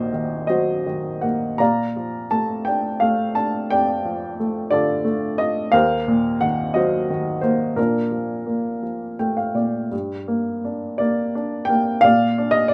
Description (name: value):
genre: classical, lyrical solo piano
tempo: 57 BPM (dotted quarters)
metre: 6/8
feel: uneven beats, rubato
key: Bb major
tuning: A4 = 440 Hz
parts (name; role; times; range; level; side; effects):
- warm upright piano; solo; 0.0-12.7 s; Bb1 to Bb5; -21 LUFS; equal; none
room: moderate studio reverb, RT60 0.5 s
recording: none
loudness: -21 LUFS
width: mono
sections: 0.0-9.9 A section; 9.9-12.7 B section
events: upright piano fill 8.8-9.9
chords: 0.0 Ebm6; 1.6 Bbmaj7; 5.7 Ebm6; 7.8 Bbmaj7; 9.9 Gm; 12.0 Bb